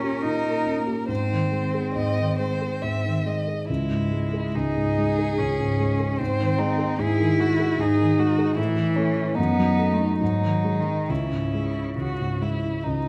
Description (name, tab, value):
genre	classical, slow romantic movement for piano trio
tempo	66-77 BPM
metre	3/4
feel	rubato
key	C# minor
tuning	A4 = 438 Hz
part	warm violin	melody	0.0-13.1 s	C#4 to E5	-31 LUFS	equal	none
part	rich cello	second line	0.0-12.9 s	C#3 to E4	-28 LUFS	equal	none
part	dark grand piano	accompaniment	0.0-13.1 s	C#2 to G#4	-27 LUFS	equal	none
room	wet recital hall reverb, RT60 1.6 s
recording	none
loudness	-24 LUFS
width	mono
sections	0.0-13.1 A section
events	none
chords	0.0 A#m6; 1.1 G#; 3.7 C#m; 6.2 G#; 8.6 A; 9.4 D#dim/F#; 10.2 G#5; 11.1 C#m